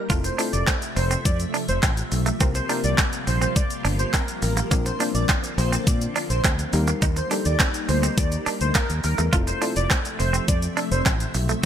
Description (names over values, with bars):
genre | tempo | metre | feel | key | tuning
dance-pop | 104 BPM | 4/4 | straight | F major | A4 = 440 Hz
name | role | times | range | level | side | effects
soft string machine | sustained chords | 0.0-11.7 s | C3 to E5 | -31 LUFS | left 1 dB | phaser, ensemble chorus, sidechain pumping
direct-recorded clean electric guitar | riff | 0.0-11.6 s | A3 to F4 | -29 LUFS | right 6 dB | lush chorus
soft round pluck | accompaniment | 0.1-10.6 s | G3 to C5 | -30 LUFS | left 4 dB | chorus, sidechain pumping
fingered electric bass | bass | 0.1-11.7 s | F1 to Bb2 | -24 LUFS | equal | sidechain pumping
pop drum kit | drums | 0.1-11.7 s | handclaps, hi-hat, kick drum, shaker | -23 LUFS | equal | overdrive, gated reverb
airy dreamy lead | melody | 0.2-11.0 s | Bb4 to D5 | -29 LUFS | right 1 dB | chorus, sidechain pumping, digital delay
room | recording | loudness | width
little or no reverb | bright 1980s-style digital production | -20 LUFS | side -9 dB against mid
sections
0.1-11.7 A section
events
drop 0.1-11.7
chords
0.1 Fmaj7; 2.4 C7sus4; 4.7 Bbadd9; 6.7 Eb; 9.3 Fmaj7